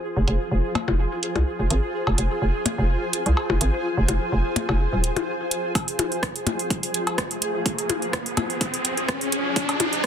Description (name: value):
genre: minimal techno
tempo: 126 BPM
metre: 4/4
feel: swing 54% on 16ths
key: F minor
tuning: A4 = 440 Hz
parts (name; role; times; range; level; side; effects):
- granular cloud pad; texture; 0.0-10.1 s; F4 to Ab5; -29 LUFS; left 1 dB; built-in reverb, sidechain pumping
- pulsing gated texture; texture; 0.0-10.1 s; Ab4; -32 LUFS; right 2 dB; chorus, built-in reverb, sidechain pumping
- hollow knocking FM bass; bass; 0.2-5.1 s; Eb1 to C2; -21 LUFS; equal; sidechain pumping
- house drum kit; drums; 0.3-10.1 s; hi-hat, rim click; -26 LUFS; right 3 dB; low-pass filter on hats, soft clipping on snare, low-pass filter on snare, low-pass filter on room
- cowbell and percussion blips; percussion; 0.8-9.9 s; none; -27 LUFS; left 5 dB; dub echo
- electronic kick drum; drums; 5.8-10.1 s; none; -28 LUFS; equal; high-pass filter on kick, high-pass filter on room
- riser; sound effects; 6.8-10.1 s; none; -28 LUFS; equal; none
room: light reverb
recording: dense, heavily limited modern master, high-pass filter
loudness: -21 LUFS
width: side -8 dB against mid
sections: 0.0-5.8 A section; 5.8-10.1 B section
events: build-up 5.8-10.1; riser 6.8-10.1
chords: 0.0 Fm